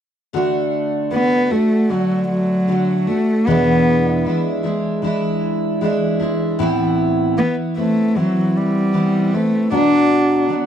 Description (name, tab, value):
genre	pop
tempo	77 BPM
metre	4/4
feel	straight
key	D mixolydian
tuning	A4 = 440 Hz
part	picked steel-string acoustic guitar	accompaniment	0.3-10.7 s	E2 to F#4	-18 LUFS	equal	double-tracked left and right
part	warm cello	melody	1.1-10.5 s	F#3 to D4	-16 LUFS	equal	none
room	light reverb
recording	dry, close 1970s-style studio recording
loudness	-15 LUFS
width	side -9 dB against mid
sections	0.3-10.7 A section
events	none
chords	0.3 D; 3.5 E7; 6.6 Amadd9; 9.7 Bm